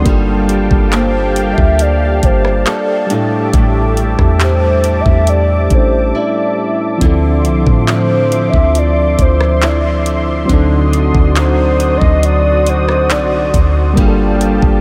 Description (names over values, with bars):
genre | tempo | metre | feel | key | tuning
contemporary R&B | 69 BPM | 4/4 | straight | D minor | A4 = 440 Hz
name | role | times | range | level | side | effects
soft electric-piano-like synth keys | accompaniment | 0.0-14.8 s | F3 to A4 | -20 LUFS | equal | chorus
warm analog pad | sustained chords | 0.0-14.8 s | F3 to Eb6 | -22 LUFS | equal | chorus
nylon-string guitar | arpeggios | 0.0-14.8 s | A2 to A4 | -24 LUFS | equal | analog chorus, diffuse ambient delay
soft 808-style bass | bass | 0.0-14.8 s | G1 to A2 | -17 LUFS | equal | none
smooth R&B drum kit | drums | 0.1-14.8 s | handclaps, hi-hat, kick drum, rim click | -18 LUFS | equal | none
hollow clarinet-like synth lead | melody | 0.9-13.7 s | C5 to E5 | -20 LUFS | equal | chorus, diffuse ambient delay
room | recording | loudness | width
moderate huge ambient reverb, RT60 6.8 s | dreamy mix soaked in reverb | -12 LUFS | mono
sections
0.0-14.8 A section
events
break 6.1-7.0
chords
0.1 Gm9; 3.1 A7sus4; 7.0 Dm9; 10.5 D7b9; 14.0 Gm9